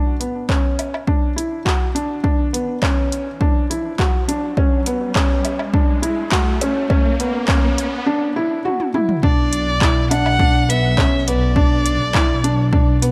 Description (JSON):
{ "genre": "piano and strings electronica", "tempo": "103 BPM", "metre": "4/4", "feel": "straight", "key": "B minor", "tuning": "A4 = 440 Hz", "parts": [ { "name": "felt-muted upright piano", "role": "riff", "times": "0.0-13.1 s", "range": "B3 to F#4", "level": "-23 LUFS", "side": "equal", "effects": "digital delay" }, { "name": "riser", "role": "sound effects", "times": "2.5-8.1 s", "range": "none", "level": "-31 LUFS", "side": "equal", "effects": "none" }, { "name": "deep house drum kit", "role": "drums", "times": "0.2-13.1 s", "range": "handclaps, hi-hat, toms, woodblock", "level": "-26 LUFS", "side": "equal", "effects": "overdrive" }, { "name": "electronic kick drum", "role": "drums", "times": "0.5-12.8 s", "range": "none", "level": "-21 LUFS", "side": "equal", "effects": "overdrive" }, { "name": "rich violin", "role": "melody", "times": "9.2-13.0 s", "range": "D5 to F#5", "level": "-24 LUFS", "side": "equal", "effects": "none" }, { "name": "warm symphonic double bass section", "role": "bass", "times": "9.2-13.1 s", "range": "B1", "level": "-22 LUFS", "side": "equal", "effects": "sidechain pumping" } ], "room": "light reverb, studio ambience", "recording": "none", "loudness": "-18 LUFS", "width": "mono", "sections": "0.0-9.2 A section; 9.2-13.1 B section", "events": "build-up 0.0-9.2; riser 2.5-8.1; drum fill 8.7-9.2; drop 9.2-13.1", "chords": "0.0 Bmadd9; 9.2 Bm" }